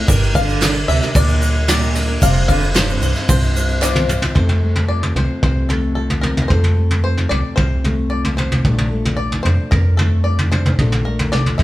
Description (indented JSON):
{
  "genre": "indie folk with a building arrangement",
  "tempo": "112 BPM",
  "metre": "4/4",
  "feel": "straight",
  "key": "F major",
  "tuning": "A4 = 440 Hz",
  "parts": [
    { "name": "picked twelve-string acoustic guitar", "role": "accompaniment", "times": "0.0-4.4 s", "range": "F3 to C5", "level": "-25 LUFS", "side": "left 4 dB", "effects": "none" },
    { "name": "metallic FM bass", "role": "bass", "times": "0.0-11.6 s", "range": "F1 to F2", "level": "-18 LUFS", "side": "equal", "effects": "none" },
    { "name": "bluegrass banjo", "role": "melody", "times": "0.1-11.6 s", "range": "A4 to F5", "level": "-25 LUFS", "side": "left 2 dB", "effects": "none" },
    { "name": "warm cello", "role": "second line", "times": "0.1-4.1 s", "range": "G2 to D3", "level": "-22 LUFS", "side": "right 4 dB", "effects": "none" },
    { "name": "soft brush drum kit", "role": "drums", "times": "0.1-11.6 s", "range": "kick drum, ride cymbal, snare drum, toms", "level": "-18 LUFS", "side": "equal", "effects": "none" },
    { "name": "tube shaker", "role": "percussion", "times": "0.1-4.2 s", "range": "none", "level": "-31 LUFS", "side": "right 7 dB", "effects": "none" },
    { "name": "group handclap", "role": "percussion", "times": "0.6-3.9 s", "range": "none", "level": "-30 LUFS", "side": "right 7 dB", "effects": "none" },
    { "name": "fingerpicked steel-string acoustic guitar", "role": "accompaniment", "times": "4.4-11.6 s", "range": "F2 to A4", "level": "-23 LUFS", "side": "left 2 dB", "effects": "none" }
  ],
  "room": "moderate stone room reverb, RT60 1.2 s",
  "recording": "band playing live in one room",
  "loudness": "-14 LUFS",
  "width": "side -16 dB against mid",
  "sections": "0.0-4.4 A section; 4.4-11.6 B section",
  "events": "drum fill 3.8-4.4",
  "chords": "0.1 Gm; 2.2 Fsus2; 4.4 F; 8.6 Bbmaj7",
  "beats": "| 0.09 0.62 1.15 1.69 | 2.22 2.76 3.29 3.83 | 4.36 4.90 5.43 5.97 | 6.50 7.04 7.58 8.11 | 8.65 9.18 9.72 10.25 | 10.79 11.33"
}